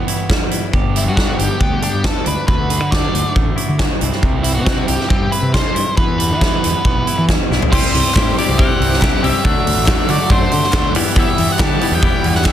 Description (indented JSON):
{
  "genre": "indie rock",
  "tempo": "138 BPM",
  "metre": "4/4",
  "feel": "straight",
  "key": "unclear",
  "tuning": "A4 = 440 Hz",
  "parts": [
    { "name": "biting overdriven guitar", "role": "riff", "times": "0.0-12.5 s", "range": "E2 to G4", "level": "-24 LUFS", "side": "right 8 dB", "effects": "wide subtle chorus" },
    { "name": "crunchy overdriven guitar", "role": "riff", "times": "0.0-12.5 s", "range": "G2 to G4", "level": "-23 LUFS", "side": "left 8 dB", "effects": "none" },
    { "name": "big rock drum kit", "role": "drums", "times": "0.1-12.5 s", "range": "crash cymbal, hi-hat, kick drum, snare drum, toms", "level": "-16 LUFS", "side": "equal", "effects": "soft clipping on snare" },
    { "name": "fuzz fingered electric bass", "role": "bass", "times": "0.7-12.5 s", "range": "G1 to E3", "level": "-20 LUFS", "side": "equal", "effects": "overdrive" },
    { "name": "octave-fuzz lead guitar", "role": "melody", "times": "1.0-12.5 s", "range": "E4 to A5", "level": "-21 LUFS", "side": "equal", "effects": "distortion" },
    { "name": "analog string pad", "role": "sustained chords", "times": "7.7-12.5 s", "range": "F#4 to D6", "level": "-31 LUFS", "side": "equal", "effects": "none" },
    { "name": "group handclap", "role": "percussion", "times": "8.1-12.5 s", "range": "none", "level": "-28 LUFS", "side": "left 7 dB", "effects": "none" }
  ],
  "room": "little or no reverb",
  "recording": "dense, heavily limited modern master",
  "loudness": "-13 LUFS",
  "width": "side -10 dB against mid",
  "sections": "0.0-7.7 A section; 7.7-12.5 B section",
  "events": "drum fill 7.5",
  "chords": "0.0 Em; 0.7 G; 2.5 Dadd9; 4.0 C; 6.0 Em; 7.7 Cadd9; 9.4 Dadd9; 10.9 Em"
}